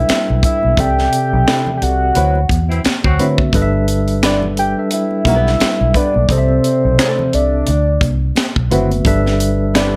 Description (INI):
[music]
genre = R&B, neo-soul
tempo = 87 BPM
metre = 4/4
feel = swing 58% on 16ths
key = G major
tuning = A4 = 440 Hz
[part]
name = soft octave-layered synth lead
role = melody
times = 0.0-10.0 s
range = C5 to G5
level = -20 LUFS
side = equal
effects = chorus
[part]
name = mellow tine electric piano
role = accompaniment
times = 0.0-10.0 s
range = C3 to G5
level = -21 LUFS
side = equal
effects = none
[part]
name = vintage muted fingered electric bass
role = bass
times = 0.0-10.0 s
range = F#1 to D3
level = -19 LUFS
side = equal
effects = none
[part]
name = tight funk drum kit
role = drums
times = 0.1-9.9 s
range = finger snaps, hi-hat, kick drum, snare drum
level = -20 LUFS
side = equal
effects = none
[part]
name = congas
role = percussion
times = 0.1-9.9 s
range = none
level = -31 LUFS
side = equal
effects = none
[part]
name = flamenco guitar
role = second line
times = 1.5-10.0 s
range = F#3 to B4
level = -23 LUFS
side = equal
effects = none
[part]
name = mellow horn section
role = stabs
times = 2.7-3.3 s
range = E3 to F#4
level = -24 LUFS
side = equal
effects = none
[sound]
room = little or no reverb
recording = none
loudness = -15 LUFS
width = mono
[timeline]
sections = 0.0-10.0 A section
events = band accent 0.8-3.5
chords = 0.0 G6; 0.8 C69; 2.2 D13; 3.5 G6; 6.3 C69; 7.7 D13; 9.0 G6